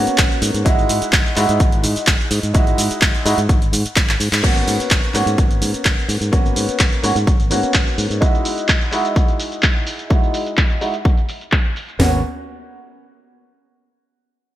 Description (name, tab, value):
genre	filtered disco house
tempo	127 BPM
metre	4/4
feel	straight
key	G# minor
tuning	A4 = 440 Hz
part	clear baby grand piano	accompaniment	0.0-12.2 s	G#3 to F#4	-21 LUFS	right 1 dB	phaser, sidechain pumping, low-pass filter
part	modern bright fingered electric bass	bass	0.0-8.2, 12.0-12.2 s	G#1 to G#2	-21 LUFS	equal	sidechain pumping, low-pass filter
part	punchy analog drum machine	drums	0.1-12.0 s	crash cymbal, handclaps, hi-hat, shaker	-20 LUFS	equal	sidechain pumping on hats, low-pass filter on hats, sidechain pumping on perc, low-pass filter on perc, low-pass filter on snare, sidechain pumping on cymbals, low-pass filter on cymbals, low-pass filter on room, gated reverb
part	house drum kit	drums	0.2-12.1 s	hi-hat, kick drum, snare drum, toms	-16 LUFS	equal	overdrive
room	light reverb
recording	bright 1980s-style digital production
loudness	-14 LUFS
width	side -13 dB against mid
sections	0.0-4.4 A section; 4.4-12.0 B section; 12.0-13.9 C section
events	drop 0.0-4.4; drum fill 4.1-4.4; band accent 4.3; filter sweep 4.4-12.0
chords	0.0 G#m11; 0.7 Emaj9/G#; 4.4 G#m11; 8.2 Emaj9/G#; 12.0 G#m11